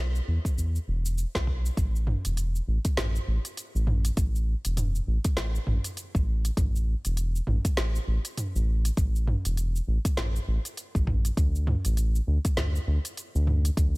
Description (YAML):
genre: organic downtempo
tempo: 100 BPM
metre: 4/4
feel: swing 59% on 16ths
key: unclear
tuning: A4 = 442 Hz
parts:
  - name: round analog bass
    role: bass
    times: 0.0-14.0 s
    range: E1 to E2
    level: -26 LUFS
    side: equal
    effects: sidechain pumping
  - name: deep house drum kit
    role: drums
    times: 0.2-13.9 s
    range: hi-hat, shaker, snare drum, toms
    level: -32 LUFS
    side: equal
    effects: small room reverb
  - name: electronic kick drum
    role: drums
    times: 0.4-13.9 s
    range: none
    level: -26 LUFS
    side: equal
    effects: small room reverb
room: little or no reverb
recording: none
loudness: -25 LUFS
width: side -25 dB against mid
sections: 0.0-1.8 A section; 1.8-14.0 B section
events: none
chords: none